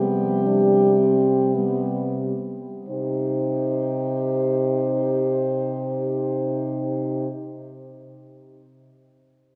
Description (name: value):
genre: classical, lyrical piece for horn quartet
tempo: 44-63 BPM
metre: 3/4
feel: rubato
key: C minor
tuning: A4 = 442 Hz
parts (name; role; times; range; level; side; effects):
- mellow French horn; melody; 0.0-7.3 s; G4 to C5; -26 LUFS; equal; none
- mellow French horn; second line; 0.0-7.3 s; B3 to G4; -31 LUFS; equal; none
- dark French horn; accompaniment; 0.0-7.3 s; G3 to Eb4; -30 LUFS; equal; none
- mellow French horn; bass; 0.0-7.3 s; C3; -30 LUFS; equal; none
room: wet cathedral reverb, RT60 4.3 s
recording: recorded in a church or concert hall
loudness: -23 LUFS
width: mono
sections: 0.0-2.9 A section; 2.9-6.8 B section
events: slowing down 0.0-2.9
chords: 0.0 C5; 2.9 Cm